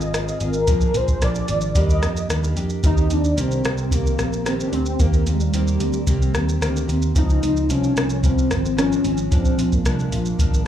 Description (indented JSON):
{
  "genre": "indie pop, bedroom pop",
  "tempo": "111 BPM",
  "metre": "4/4",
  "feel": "straight",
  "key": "Eb major",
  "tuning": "A4 = 440 Hz",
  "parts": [
    { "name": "warm velvety synth lead", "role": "melody", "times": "0.0-10.7 s", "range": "G3 to Eb5", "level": "-24 LUFS", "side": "left 1 dB", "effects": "ensemble chorus, slapback echo, tape echo" },
    { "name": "fingerpicked steel-string acoustic guitar", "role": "accompaniment", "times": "0.0-10.7 s", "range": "Bb2 to Ab4", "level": "-27 LUFS", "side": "left 2 dB", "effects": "wide subtle chorus, warbly pitch drift, slapback echo" },
    { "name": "vintage muted picked electric bass", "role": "bass", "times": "0.0-10.6 s", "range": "Ab1 to F2", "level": "-22 LUFS", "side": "right 1 dB", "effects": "none" },
    { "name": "soft vintage rhythm box", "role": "drums", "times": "0.0-10.7 s", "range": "hi-hat, kick drum, rim click, shaker", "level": "-21 LUFS", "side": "equal", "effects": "none" }
  ],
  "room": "light reverb",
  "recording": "live gig heard through the venue's PA, club reverb",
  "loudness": "-18 LUFS",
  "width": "side -10 dB against mid",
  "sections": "0.0-2.8 A section; 2.8-10.7 B section",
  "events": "none",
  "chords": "0.0 Dbmaj7 (rootless); 0.7 Bb7; 1.8 Ebmaj7; 2.8 Eb6; 7.2 Dbmaj7; 9.3 Bb7"
}